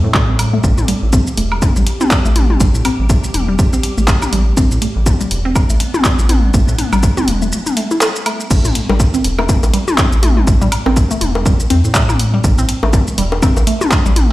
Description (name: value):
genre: minimal techno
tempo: 122 BPM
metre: 4/4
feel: swing 58% on 16ths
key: A minor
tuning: A4 = 440 Hz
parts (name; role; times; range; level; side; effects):
- hollow square pluck; riff; 0.0-14.3 s; G3 to A4; -20 LUFS; equal; chorus, sidechain pumping, dub echo
- rubbery square bass; bass; 0.0-14.3 s; E1 to A2; -16 LUFS; equal; sidechain pumping
- swarming drone; texture; 0.0-8.5 s; G3 to A4; -29 LUFS; right 2 dB; built-in reverb, sidechain pumping
- electronic kick drum; drums; 0.1-14.0 s; none; -14 LUFS; equal; none
- punchy analog drum machine; drums; 0.1-14.3 s; crash cymbal, handclaps, hi-hat, shaker; -20 LUFS; equal; none
- electronic woodblock, toms and bongos; percussion; 0.4-14.3 s; none; -20 LUFS; left 2 dB; overdrive, dub echo
room: light reverb, digital ambience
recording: played on a big sound system in a bare room, stone room reverb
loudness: -11 LUFS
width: side -17 dB against mid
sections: 0.0-8.5 A section; 8.5-14.3 B section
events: break 7.5-8.5; drop 8.5-14.3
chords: 0.0 A7(no3); 8.5 A5